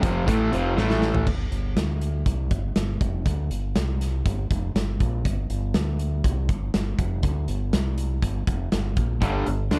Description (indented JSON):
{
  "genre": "classic rock",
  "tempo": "121 BPM",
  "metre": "4/4",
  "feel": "straight",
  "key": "unclear",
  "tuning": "A4 = 439 Hz",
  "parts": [
    { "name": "crunchy overdriven guitar", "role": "riff", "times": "0.0-1.3, 9.2-9.8 s", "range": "F2 to D4", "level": "-28 LUFS", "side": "equal", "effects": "none" },
    { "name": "overdriven semi-hollow guitar", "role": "riff", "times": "0.0-1.3, 9.2-9.8 s", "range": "F2 to D4", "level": "-30 LUFS", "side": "equal", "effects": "none" },
    { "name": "growling fingered electric bass", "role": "bass", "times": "0.0-9.8 s", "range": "F1 to D2", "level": "-28 LUFS", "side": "equal", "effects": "overdrive" },
    { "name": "big rock drum kit", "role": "drums", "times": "0.0-9.8 s", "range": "crash cymbal, hi-hat, kick drum, snare drum, toms", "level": "-28 LUFS", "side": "equal", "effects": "none" }
  ],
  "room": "studio ambience",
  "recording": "none",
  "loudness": "-25 LUFS",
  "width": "mono",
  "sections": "0.0-1.3 A section; 1.3-9.8 B section",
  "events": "drum fill 0.8-1.3",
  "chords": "0.0 F5; 0.8 A5; 1.3 N.C.; 2.3 G5; 3.8 N.C.; 4.3 Fsus24; 5.7 N.C.; 6.2 G5; 7.7 N.C.; 8.2 G5"
}